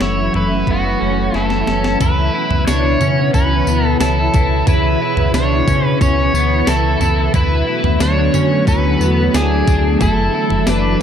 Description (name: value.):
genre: dream pop.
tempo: 90 BPM.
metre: 4/4.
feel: straight.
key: unclear.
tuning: A4 = 440 Hz.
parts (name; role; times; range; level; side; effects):
overdriven slide guitar; melody; 0.0-11.0 s; F#4 to C#5; -20 LUFS; right 2 dB; tape echo.
soft string machine; sustained chords; 0.0-11.0 s; B2 to F#4; -19 LUFS; equal; ensemble chorus.
electric guitar at the edge of break-up; arpeggios; 0.0-11.0 s; B3 to E4; -21 LUFS; left 4 dB; ensemble chorus, tape echo.
sub bass with octave; bass; 0.0-11.0 s; F#1 to D3; -18 LUFS; equal; none.
crisp 8-bit digital drum machine; drums; 0.0-10.8 s; kick drum, snare drum, tambourine, toms; -19 LUFS; equal; overdrive.
vibraphone with hard mallets; texture; 0.0-10.3 s; E4 to F#5; -30 LUFS; right 4 dB; stereo widening, tape echo.
room: moderate spring reverb, RT60 2.4 s.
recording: echo-heavy mix.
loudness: -13 LUFS.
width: side -8 dB against mid.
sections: 0.0-2.0 A section; 2.0-11.0 B section.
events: drum fill 1.3-2.0.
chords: 0.0 F#m7; 2.0 C#m7; 7.3 Bm7/D; 10.0 F#m7.